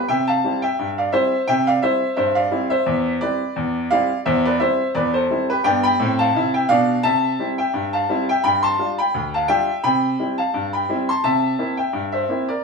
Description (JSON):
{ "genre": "ragtime piano", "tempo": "86 BPM", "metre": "2/4", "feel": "swing 55% on 16ths", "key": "C major", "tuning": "A4 = 443 Hz", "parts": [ { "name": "bright upright piano", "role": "solo", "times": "0.0-12.6 s", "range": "D2 to C6", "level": "-17 LUFS", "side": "equal", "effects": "none" } ], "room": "moderate club reverb, RT60 0.6 s", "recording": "small room ambience", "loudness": "-17 LUFS", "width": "side -4 dB against mid", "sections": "0.0-12.6 A section", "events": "none", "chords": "0.1 C; 2.9 C/E; 5.6 G7; 7.0 C; 8.4 G5; 9.8 C; 11.2 C7" }